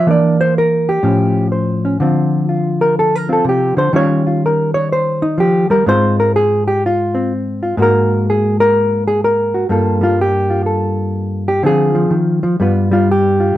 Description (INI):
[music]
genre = solo jazz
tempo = 125 BPM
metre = 4/4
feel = swing 67% on 8ths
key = unclear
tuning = A4 = 441 Hz
[part]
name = hollow-body jazz guitar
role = solo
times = 0.0-13.6 s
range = G2 to D5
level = -12 LUFS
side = equal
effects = none
[sound]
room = moderate club reverb, RT60 0.8 s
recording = none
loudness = -12 LUFS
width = side -14 dB against mid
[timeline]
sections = 0.0-9.7 A section; 9.7-13.6 A section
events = hollow-body jazz guitar solo 0.0-9.7, 9.7-13.6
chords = 0.1 Em7b5; 1.0 A7alt; 2.0 Dm7; 3.9 Eb9; 5.9 Ab6; 7.8 Absus2; 9.7 Gm9; 11.6 Dm7b5; 12.6 G7